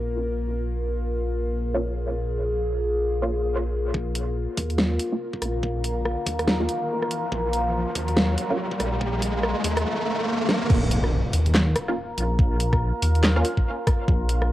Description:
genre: deep dubstep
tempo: 142 BPM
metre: 4/4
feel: swing 60% on 16ths, half-time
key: unclear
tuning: A4 = 444 Hz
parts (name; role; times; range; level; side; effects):
- overtone-sweeping drone; sustained chords; 0.0-14.5 s; Bb3 to Eb5; -28 LUFS; left 1 dB; chorus, built-in reverb, cassette tape
- dark detuned saw bass; bass; 0.0-14.5 s; Bb1 to Eb2; -25 LUFS; equal; transformer saturation
- filtered dub chord stab; stabs; 1.7-8.6, 11.9-13.5 s; Bb3 to F4; -30 LUFS; right 1 dB; phaser, ensemble chorus, cassette tape, dub echo
- electronic kick drum; drums; 3.9-14.2 s; none; -22 LUFS; equal; high-pass filter on kick, cassette tape
- riser and impact; sound effects; 5.6-12.4 s; none; -28 LUFS; equal; none
- dubstep drum kit; drums; 4.2-14.5 s; crash cymbal, handclaps, hi-hat, rim click, snare drum; -25 LUFS; equal; cassette tape
room: light reverb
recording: home recording on cassette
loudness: -22 LUFS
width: side -14 dB against mid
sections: 0.0-3.9 A section; 3.9-10.7 B section; 10.7-14.5 C section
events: filter sweep on synth stab 0.0-3.9; filter sweep on synth drone 0.0-3.9; build-up 3.9-10.7; riser 5.6-10.7; drum fill 10.5; drop 10.7-14.5; impact 10.7-12.4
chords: 0.0 Bb5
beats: 0.14 | 0.56 0.98 1.41 1.83 | 2.25 2.67 3.10 3.52 | 3.94 4.36 4.79 5.21 | 5.63 6.05 6.48 6.90 | 7.32 7.74 8.17 8.59 | 9.01 9.43 9.86 10.28 | 10.70 11.12 11.55 11.97 | 12.39 12.81 13.24 13.66 | 14.08 14.50

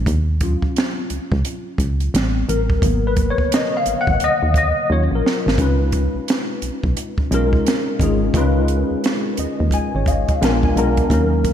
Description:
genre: R&B, neo-soul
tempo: 87 BPM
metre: 4/4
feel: swing 63% on 16ths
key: unclear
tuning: A4 = 437 Hz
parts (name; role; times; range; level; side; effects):
- tine electric piano; accompaniment; 0.0-11.5 s; Gb3 to Bb5; -20 LUFS; left 2 dB; ensemble chorus
- solid FM bass; bass; 0.0-11.5 s; Ab1 to Eb2; -19 LUFS; right 1 dB; none
- compact cocktail drum kit; drums; 0.1-11.5 s; hi-hat, kick drum, snare drum; -21 LUFS; right 1 dB; none
room: moderate lush hall reverb, RT60 2.8 s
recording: dreamy mix soaked in reverb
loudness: -16 LUFS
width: side -9 dB against mid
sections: 0.0-5.6 A section; 5.6-11.5 B section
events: tine electric piano solo 0.0-5.6; drum fill 4.9-5.6; tine electric piano fill 9.0-11.1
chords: 0.1 Ebm7; 2.1 Am9; 2.8 Abm9; 4.9 Ebm9; 5.6 Db9; 10.4 Bb7b9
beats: | 0.06 0.75 1.44 2.13 | 2.82 3.51 4.20 4.89 | 5.58 6.27 6.96 7.65 | 8.34 9.03 9.72 10.41 | 11.10

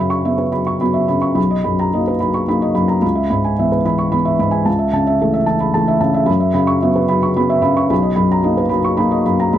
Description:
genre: neoclassical minimalist piano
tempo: 110 BPM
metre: 3/4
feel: rubato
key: B major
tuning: A4 = 440 Hz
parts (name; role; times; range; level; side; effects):
- felt-muted upright piano; solo; 0.0-9.6 s; B1 to C#6; -14 LUFS; equal; none
room: light reverb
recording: dark, warm production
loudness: -14 LUFS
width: side -11 dB against mid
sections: 0.0-9.6 A section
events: none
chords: 0.0 F#7sus4; 1.4 Bmaj7; 3.0 C#m7; 4.7 A/C#; 6.3 F#7sus4; 7.9 Bmaj7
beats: 0.26 0.82 | 1.37 1.93 2.48 | 3.03 3.59 4.13 | 4.67 5.21 5.75 | 6.28 6.82 7.36 | 7.91 8.45 8.99 | 9.54

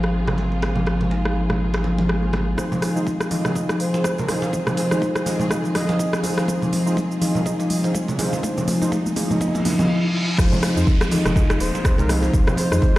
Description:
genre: afro house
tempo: 123 BPM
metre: 4/4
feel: swing 57% on 16ths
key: F minor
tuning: A4 = 440 Hz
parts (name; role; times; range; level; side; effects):
- rich studio string section; sustained chords; 0.0-13.0 s; C3 to Ab4; -32 LUFS; equal; sidechain pumping
- kalimba; arpeggios; 0.0-12.9 s; C3 to Eb4; -24 LUFS; left 1 dB; sidechain pumping, low-pass filter, dub echo
- warm sub bass; bass; 0.0-2.6, 10.4-12.8 s; Eb1 to F2; -24 LUFS; equal; sidechain pumping
- afro-pop drum kit; drums; 0.0-13.0 s; crash cymbal, hi-hat, rim click, shaker, toms; -26 LUFS; equal; low-pass filter on snare, low-pass filter on toms, low-pass filter on perc, low-pass filter on hats, low-pass filter on cymbals
- congas; percussion; 0.0-12.9 s; none; -27 LUFS; right 1 dB; none
- swell, riser, reverse cymbal and downlifter; sound effects; 1.8-13.0 s; none; -32 LUFS; equal; none
- warm analog keys; stabs; 2.6-12.8 s; Eb4 to Eb5; -27 LUFS; right 2 dB; chorus, sidechain pumping, low-pass filter, dub echo
- electronic kick drum; drums; 2.6-12.9 s; none; -20 LUFS; equal; high-pass filter on kick
- expressive portamento lead; melody; 3.8-6.1, 11.6-13.0 s; Bb4 to Eb5; -29 LUFS; right 1 dB; chorus, dub echo
room: moderate digital room reverb, RT60 1.2 s, digital ambience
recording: played on a big sound system in a bare room, stone room reverb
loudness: -18 LUFS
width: side -16 dB against mid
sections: 0.0-2.6 A section; 2.6-10.4 B section; 10.4-13.0 C section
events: swell 1.8-2.6; build-up 2.6-10.4; drum fill 2.6-9.9; riser 7.2-10.4; reverse cymbal 9.4-10.4; drop 10.4-13.0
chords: 0.0 Abadd9; 2.6 Fm7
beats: 0.14 | 0.63 1.12 1.60 2.09 | 2.58 3.07 3.56 4.04 | 4.53 5.02 5.51 5.99 | 6.48 6.97 7.46 7.95 | 8.43 8.92 9.41 9.90 | 10.38 10.87 11.36 11.85 | 12.34 12.82

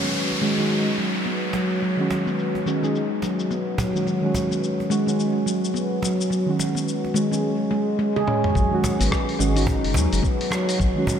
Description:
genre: organic downtempo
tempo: 107 BPM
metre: 4/4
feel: swing 60% on 16ths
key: G# minor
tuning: A4 = 440 Hz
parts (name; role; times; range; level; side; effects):
- muted felt-like synth keys; accompaniment; 0.0-11.2 s; D#3 to G#4; -26 LUFS; right 2 dB; chorus, sidechain pumping, low-pass filter, diffuse ambient delay
- handpan; arpeggios; 0.0-10.9 s; F#3 to G#4; -23 LUFS; equal; low-pass filter, diffuse ambient delay
- dusty soul sampler-style drum kit; drums; 0.0-11.2 s; hi-hat, rim click, shaker, toms; -31 LUFS; left 2 dB; low-pass filter on hats, low-pass filter on perc, low-pass filter on snare, low-pass filter on toms, low-pass filter on room
- downlifter; sound effects; 0.0-4.1 s; none; -30 LUFS; left 1 dB; none
- cajon; percussion; 0.3-11.2 s; none; -33 LUFS; right 1 dB; none
- round analog bass; bass; 8.6-10.9 s; F#1 to D#2; -23 LUFS; equal; tube saturation, sidechain pumping
- electronic kick drum; drums; 8.6-10.9 s; none; -24 LUFS; left 1 dB; none
room: moderate huge ambient reverb, RT60 8.8 s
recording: dreamy mix soaked in reverb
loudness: -20 LUFS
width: side -8 dB against mid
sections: 0.0-8.6 A section; 8.6-11.2 B section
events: filter sweep on drum 0.0-8.6; filter sweep on synth keys 0.0-8.6; drum fill 8.1-8.6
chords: 0.0 G#m7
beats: 0.14 0.70 1.26 | 1.82 2.39 2.95 3.51 | 4.07 4.63 5.19 5.75 | 6.31 6.87 7.43 7.99 | 8.55 9.12 9.68 10.24 | 10.80

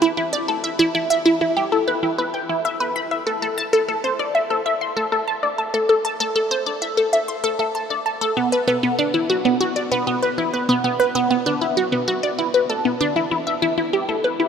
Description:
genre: ambient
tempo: 97 BPM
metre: 4/4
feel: straight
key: E minor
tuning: A4 = 440 Hz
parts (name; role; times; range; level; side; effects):
- resonant blip pluck; solo; 0.0-14.5 s; B3 to C6; -18 LUFS; equal; phaser, analog delay
room: wet huge ambient reverb, RT60 8.7 s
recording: none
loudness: -18 LUFS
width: side -7 dB against mid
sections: 0.0-13.3 A section; 13.3-14.5 B section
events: none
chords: none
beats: 0.33 | 0.94 1.56 2.18 2.80 | 3.42 4.04 4.66 5.28 | 5.89 6.51 7.13 7.75 | 8.37 8.99 9.61 10.22 | 10.84 11.46 12.08 12.70 | 13.32 13.94

